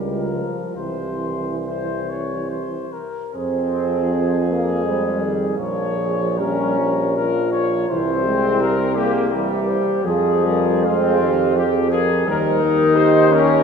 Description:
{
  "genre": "classical, hymn-like piece for brass band",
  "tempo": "65-89 BPM",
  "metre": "3/4",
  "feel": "rubato",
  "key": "F minor",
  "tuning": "A4 = 442 Hz",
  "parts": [
    { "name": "dark trumpet section", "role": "melody", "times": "0.0-13.6 s", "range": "F4 to Db5", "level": "-24 LUFS", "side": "left 7 dB", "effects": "none" },
    { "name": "dark French horn section", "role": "second line", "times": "0.0-13.5 s", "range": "E4 to C5", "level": "-24 LUFS", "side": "right 5 dB", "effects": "none" },
    { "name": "mellow trombone section", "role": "accompaniment", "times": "0.0-13.6 s", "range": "F3 to F4", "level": "-22 LUFS", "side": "left 1 dB", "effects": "none" },
    { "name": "warm euphonium", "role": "accompaniment", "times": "0.0-13.6 s", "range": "Eb3 to Ab3", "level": "-27 LUFS", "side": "right 2 dB", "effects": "none" },
    { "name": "clear tuba", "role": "bass", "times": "0.0-13.6 s", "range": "Bb1 to F2", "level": "-23 LUFS", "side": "equal", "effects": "none" }
  ],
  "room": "wet church reverb, RT60 3.1 s",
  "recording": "minimal, uncompressed stereo recording",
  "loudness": "-17 LUFS",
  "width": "side -6 dB against mid",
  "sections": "0.0-3.3 A section; 3.3-13.6 B section",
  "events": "none",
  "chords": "0.0 Bbm/Db; 0.8 C; 3.3 Fm; 5.6 Bbm; 7.9 C7; 10.1 Fm; 12.3 Eb",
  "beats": "| 0.76 1.66 2.51 | 3.35 4.12 4.85 | 5.58 6.39 7.17 | 7.90 8.62 9.33 | 10.06 10.86 11.58 | 12.27 12.96"
}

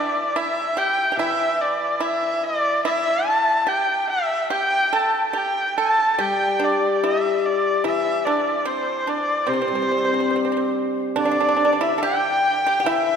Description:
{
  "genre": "chinese traditional, Chinese chamber ensemble",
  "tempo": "72 BPM",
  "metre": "2/4",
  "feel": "rubato",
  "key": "unclear",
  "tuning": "A4 = 442 Hz",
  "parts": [
    { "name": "rich erhu", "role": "melody", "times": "0.0-13.2 s", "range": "C5 to A5", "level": "-20 LUFS", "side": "equal", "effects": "none" },
    { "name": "pipa", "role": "second line", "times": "0.0-13.2 s", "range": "C4 to A4", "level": "-26 LUFS", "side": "right 4 dB", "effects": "none" },
    { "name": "hammered dulcimer", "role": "accompaniment", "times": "0.0-3.7, 6.2-13.2 s", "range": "C3 to G4", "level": "-26 LUFS", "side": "left 3 dB", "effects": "none" },
    { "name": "mellow hollow large dizi", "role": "second line", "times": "11.2-13.2 s", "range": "D5 to G5", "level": "-24 LUFS", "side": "left 3 dB", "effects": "none" }
  ],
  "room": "wet concert hall reverb, RT60 2.6 s",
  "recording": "minimal, uncompressed stereo recording",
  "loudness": "-18 LUFS",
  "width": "side -7 dB against mid",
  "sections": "0.0-11.2 A section; 11.2-13.2 B section",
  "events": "none",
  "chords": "none",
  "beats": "0.36 | 1.18 2.01 | 2.83 3.67 | 4.51 5.36 | 6.20 7.03 | 7.85 8.67 | 9.49 10.32 | 11.17 12.02 | 12.85"
}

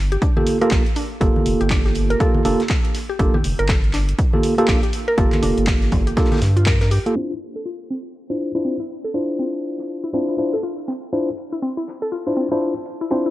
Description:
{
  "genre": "deep house",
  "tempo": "121 BPM",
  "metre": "4/4",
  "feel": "swing 60% on 16ths",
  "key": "D minor",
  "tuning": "A4 = 439 Hz",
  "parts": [
    { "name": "round analog bass", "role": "bass", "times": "0.0-7.0 s", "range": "F1 to G2", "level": "-20 LUFS", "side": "equal", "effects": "tube saturation, sidechain pumping" },
    { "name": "mallet-like synth pluck", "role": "arpeggios", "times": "0.1-13.3 s", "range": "C4 to Bb4", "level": "-26 LUFS", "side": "left 1 dB", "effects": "chorus, sidechain pumping, tape echo" },
    { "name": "punchy analog drum machine", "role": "drums", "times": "0.1-13.3 s", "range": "crash cymbal, handclaps, hi-hat, shaker", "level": "-28 LUFS", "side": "equal", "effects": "none" },
    { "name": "damped 70s drum kit", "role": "drums", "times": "0.2-13.2 s", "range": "hi-hat, snare drum", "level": "-38 LUFS", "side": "left 2 dB", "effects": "none" },
    { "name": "electronic kick drum", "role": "drums", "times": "0.2-6.8 s", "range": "none", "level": "-19 LUFS", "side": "equal", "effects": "none" },
    { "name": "tine electric piano", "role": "stabs", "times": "0.4-13.3 s", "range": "Bb3 to C5", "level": "-21 LUFS", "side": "right 1 dB", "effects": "sidechain pumping, tape echo" },
    { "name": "congas", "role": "percussion", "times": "0.4-6.4 s", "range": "none", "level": "-27 LUFS", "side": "left 2 dB", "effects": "sidechain pumping on perc" }
  ],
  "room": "light reverb, studio reverb",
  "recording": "low-pass filter",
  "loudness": "-17 LUFS",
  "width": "side -16 dB against mid",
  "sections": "0.0-7.2 A section; 7.2-13.3 B section",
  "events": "filter sweep 7.2-13.3",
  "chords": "0.0 Gm9; 7.2 Dm9",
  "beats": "0.22 0.71 | 1.21 1.71 2.20 2.70 | 3.19 3.69 4.19 4.68 | 5.18 5.67 6.17 6.67 | 7.16 7.66 8.15 8.65 | 9.14 9.64 10.14 10.63 | 11.13 11.62 12.12 12.62 | 13.11"
}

